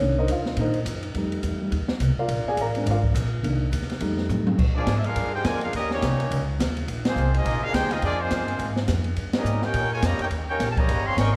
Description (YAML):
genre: jazz, big band swing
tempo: 209 BPM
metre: 4/4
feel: swing 59% on 8ths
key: unclear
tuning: A4 = 440 Hz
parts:
  - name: dark concert grand piano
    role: accompaniment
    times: 0.0-4.6 s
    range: Eb3 to Bb5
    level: -29 LUFS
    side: equal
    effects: none
  - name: upright bass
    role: bass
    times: 0.0-11.4 s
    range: G1 to Bb2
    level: -28 LUFS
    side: equal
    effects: none
  - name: open jazz drum kit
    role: drums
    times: 0.0-11.3 s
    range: crash cymbal, hi-hat, kick drum, ride cymbal, snare drum, toms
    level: -30 LUFS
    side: equal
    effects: none
  - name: muted trombone section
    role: second line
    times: 4.7-11.4 s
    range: Db3 to G4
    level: -33 LUFS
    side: equal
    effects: none
  - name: clear trumpet section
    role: melody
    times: 4.8-11.3 s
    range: Bb3 to Db6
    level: -30 LUFS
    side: equal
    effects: none
room: moderate scoring stage reverb, RT60 1.5 s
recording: recorded in a church or concert hall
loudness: -24 LUFS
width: mono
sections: 0.0-4.6 A section; 4.6-11.4 B section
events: grand piano solo 0.0-4.6; drum fill 4.3; band accent 7.0, 9.3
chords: 0.0 Cm7; 1.1 F7; 2.3 Bb7; 3.4 Cm7; 4.0 F7; 4.6 Bb7; 5.7 Eb7; 6.9 Bb7; 9.2 Eb7